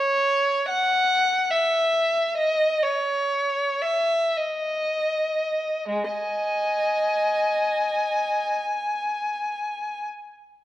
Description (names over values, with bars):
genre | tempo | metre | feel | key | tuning
classical, free, expressive piece for unaccompanied violin | 32-76 BPM | 3/4 | rubato | unclear | A4 = 440 Hz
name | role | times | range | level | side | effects
rich violin | solo | 0.0-10.0 s | G#3 to G#5 | -21 LUFS | equal | none
room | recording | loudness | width
moderate scoring stage reverb, RT60 1.5 s | worn, warbling old tape, cassette tape, warbly pitch drift | -21 LUFS | side -13 dB against mid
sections
0.0-5.9 A section; 5.9-9.5 B section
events
slowing down 0.0-5.9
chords
none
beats
0.68 1.49 | 2.37 3.30 4.38 | 5.89 7.07 8.29